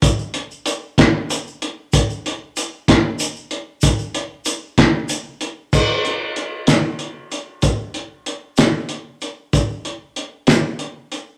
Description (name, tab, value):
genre	rock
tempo	63 BPM (dotted quarters)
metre	6/8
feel	straight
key	none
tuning	none
part	cloth-damped thuddy drum kit	drums	0.0-11.3 s	crash cymbal, hi-hat, kick drum, snare drum	-18 LUFS	equal	none
part	tube shaker	percussion	0.0-11.2 s	none	-30 LUFS	equal	none
room	moderate large studio reverb, RT60 0.9 s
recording	none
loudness	-20 LUFS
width	mono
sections	0.0-5.7 A section; 5.7-11.4 B section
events	none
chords	none